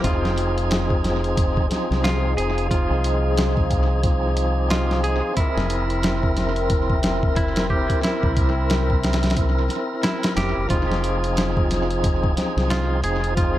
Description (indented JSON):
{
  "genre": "trip hop",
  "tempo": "90 BPM",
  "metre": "4/4",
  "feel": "swing 59% on 16ths",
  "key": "F dorian",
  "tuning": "A4 = 440 Hz",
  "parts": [
    { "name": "tonewheel organ", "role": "accompaniment", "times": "0.0-13.6 s", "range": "F3 to Bb4", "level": "-25 LUFS", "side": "equal", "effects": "overdrive, fast rotary speaker, tremolo, tape echo" },
    { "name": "dark analog pad", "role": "sustained chords", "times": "1.2-10.7 s", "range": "Ab4 to D6", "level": "-30 LUFS", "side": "left 2 dB", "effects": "chorus, phaser" },
    { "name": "clean electric guitar", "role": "arpeggios", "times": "0.0-13.6 s", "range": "E4 to Ab4", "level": "-29 LUFS", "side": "right 1 dB", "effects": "tape echo" },
    { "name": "deep dub fingered electric bass", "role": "bass", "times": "0.0-13.5 s", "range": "F1 to C2", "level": "-23 LUFS", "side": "equal", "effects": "tube saturation" },
    { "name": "dusty soul sampler-style drum kit", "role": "drums", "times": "0.0-13.6 s", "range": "hi-hat, kick drum, snare drum", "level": "-23 LUFS", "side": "equal", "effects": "tape echo" }
  ],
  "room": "digital ambience",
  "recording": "echo-heavy mix",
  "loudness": "-19 LUFS",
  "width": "side -14 dB against mid",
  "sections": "0.0-10.7 A section; 10.7-13.6 A section",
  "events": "none",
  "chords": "0.0 Fm7; 5.4 C7/F; 10.7 Fm7"
}